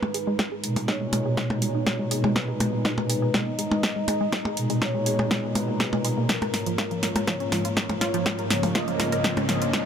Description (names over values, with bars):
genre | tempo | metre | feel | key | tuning
melodic techno | 122 BPM | 4/4 | straight | G# dorian | A4 = 439 Hz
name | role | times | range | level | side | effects
expressive synth lead | melody | 0.0-9.9 s | A#4 to D#5 | -32 LUFS | left 1 dB | lush chorus, sidechain pumping, ping-pong delay
dark analog pad | sustained chords | 0.0-9.9 s | G#2 to A#5 | -32 LUFS | left 1 dB | chorus, sidechain pumping
wide unison pluck | arpeggios | 0.0-9.7 s | E#3 to A#4 | -31 LUFS | right 1 dB | sidechain pumping, ping-pong delay
techno drum kit | drums | 0.0-9.8 s | hi-hat, percussion blips, snare drum | -26 LUFS | equal | none
electronic kick drum | drums | 0.4-9.8 s | none | -33 LUFS | equal | high-pass filter on kick, high-pass filter on room
brassy analog pad | stabs | 0.6-9.9 s | A#2 to A#3 | -29 LUFS | right 2 dB | chorus, sidechain pumping, ping-pong delay
riser | sound effects | 7.4-9.9 s | none | -38 LUFS | equal | none
room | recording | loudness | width
light reverb | none | -22 LUFS | side -8 dB against mid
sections
0.0-9.9 A section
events
build-up 0.0-9.9; drum fill 0.0-9.9; filter sweep on synth pluck 0.0-9.9; filter sweep on analog synth lead 0.0-9.9; filter sweep on analog synth pad 0.0-9.9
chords
0.0 G#madd9; 6.3 A#m/G#